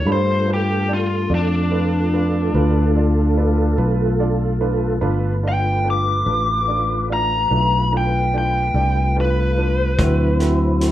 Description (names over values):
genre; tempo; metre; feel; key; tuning
slow blues; 48 BPM (dotted quarters); 12/8; straight; G mixolydian; A4 = 442 Hz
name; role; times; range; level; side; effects
biting lead guitar; melody; 0.0-10.9 s; D4 to D6; -21 LUFS; left 1 dB; overdrive, slapback echo
mellow tonewheel organ; sustained chords; 0.0-10.9 s; F#3 to B4; -24 LUFS; equal; slow rotary speaker, chorus vibrato
clear upright piano; accompaniment; 0.1-10.9 s; A3 to B5; -27 LUFS; right 7 dB; none
fingered electric bass; bass; 0.1-10.9 s; G1 to G2; -19 LUFS; equal; none
vintage drum kit; drums; 10.0-10.9 s; hi-hat, kick drum; -24 LUFS; equal; none
room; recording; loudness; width
little or no reverb; rough home demo mix, small room ambience; -16 LUFS; side -13 dB against mid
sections
0.0-10.9 A section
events
none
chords
0.1 G9; 10.0 D9